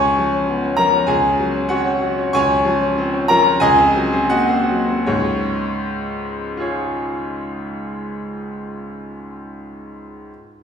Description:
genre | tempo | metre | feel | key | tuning
classical, virtuoso piano study | 76-101 BPM | 2/4 | rubato | Db major | A4 = 441 Hz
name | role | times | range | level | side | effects
bright baby grand piano | solo | 0.0-10.3 s | Db2 to Db6 | -17 LUFS | left 1 dB | none
room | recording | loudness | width
wet recital hall reverb, RT60 1.5 s | recorded in a church or concert hall | -16 LUFS | side -7 dB against mid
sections
0.0-5.1 A section; 5.1-8.1 B section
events
slowing down 1.7-5.1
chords
0.0 Db7; 1.1 Gb5/Db; 2.3 Db; 3.6 Ab7/Db; 5.1 Db

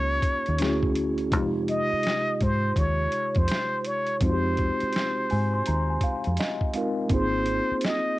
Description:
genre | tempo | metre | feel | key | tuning
R&B, neo-soul | 83 BPM | 4/4 | swing 63% on 16ths | unclear | A4 = 440 Hz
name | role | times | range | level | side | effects
trumpet with plunger mute | melody | 0.0-8.2 s | C5 to Eb5 | -27 LUFS | equal | cassette tape
mellow tine electric piano | accompaniment | 0.0-8.2 s | C3 to C6 | -28 LUFS | equal | medium stereo tremolo
deep dub fingered electric bass | bass | 0.0-7.7 s | Ab1 to Ab2 | -27 LUFS | equal | tube saturation
boom bap sampler-style drum kit | drums | 0.2-8.0 s | hi-hat, kick drum, snare drum | -28 LUFS | equal | cassette tape
room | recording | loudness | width
light reverb | home recording on cassette | -23 LUFS | side -17 dB against mid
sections
0.0-8.2 A section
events
tine electric piano fill 4.9-7.1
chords
0.0 Eb7; 0.6 Dmaj9#11; 1.3 Dbmaj9#11/Eb (rootless); 7.1 Ab6

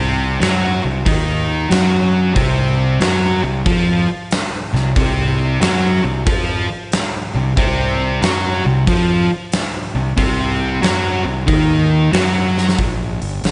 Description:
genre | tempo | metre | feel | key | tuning
blues rock power trio and southern rock | 92 BPM | 4/4 | swing 66% on 8ths | unclear | A4 = 440 Hz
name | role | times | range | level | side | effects
fuzz guitar | riff | 0.0-12.8 s | C3 to Gb4 | -19 LUFS | equal | distortion
fuzz fingered electric bass | bass | 0.0-13.5 s | G1 to Gb2 | -23 LUFS | equal | overdrive
huge arena drum kit | drums | 0.4-13.5 s | hi-hat, kick drum, snare drum | -22 LUFS | equal | none
room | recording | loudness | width
light reverb, studio reverb | nothing above 10.4 kHz | -17 LUFS | mono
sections
0.0-12.8 A section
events
drum fill 12.5-12.8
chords
0.0 Cdim; 12.8 N.C.

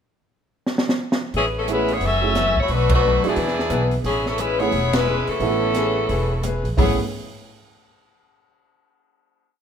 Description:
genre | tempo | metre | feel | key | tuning
jazz, big band swing | 177 BPM | 4/4 | swing 63% on 8ths | A major | A4 = 440 Hz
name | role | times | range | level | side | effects
open jazz drum kit | drums | 0.7-6.9 s | crash cymbal, hi-hat, kick drum, ride cymbal, rim click, snare drum, toms | -24 LUFS | equal | none
picked steel-string acoustic guitar | accompaniment | 1.3-7.0 s | F#2 to B4 | -28 LUFS | left 4 dB | none
upright bass | bass | 1.3-7.0 s | E1 to E2 | -24 LUFS | right 1 dB | none
edgy saxophone section | melody | 1.4-7.0 s | E3 to E5 | -21 LUFS | left 2 dB | none
warm grand piano | accompaniment | 1.7-7.0 s | F#3 to A4 | -26 LUFS | right 8 dB | none
room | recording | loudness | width
moderate recital hall reverb, RT60 1.3 s | minimal, uncompressed stereo recording | -18 LUFS | side -8 dB against mid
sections
0.0-1.3 pickup bar; 1.3-6.8 A section; 6.8-8.1 final chord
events
drum fill 0.7-1.3; band accent 2.9, 4.9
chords
0.0 N.C.; 1.3 Amaj9; 2.0 F#m7; 2.7 Bm7; 3.4 E7; 4.0 Amaj9

